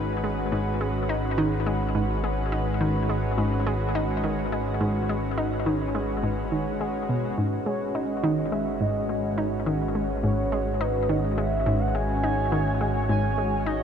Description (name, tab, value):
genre	ambient, sequencer-driven space music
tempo	105 BPM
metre	4/4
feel	straight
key	G# minor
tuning	A4 = 440 Hz
part	lush unison pad	sustained chords	0.0-13.8 s	G#3 to C#5	-28 LUFS	equal	chorus
part	analog pluck	riff	0.0-13.8 s	G#2 to D#4	-28 LUFS	equal	chorus, ping-pong delay
part	fat analog bass	bass	0.0-13.8 s	G#1	-29 LUFS	equal	none
part	expressive synth lead	melody	7.7-13.8 s	B4 to G#5	-30 LUFS	right 1 dB	lush chorus, ping-pong delay
room	wet cathedral reverb, RT60 6.5 s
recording	in a vast, echoing space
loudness	-23 LUFS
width	side -8 dB against mid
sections	0.0-13.8 A section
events	none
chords	0.0 G#m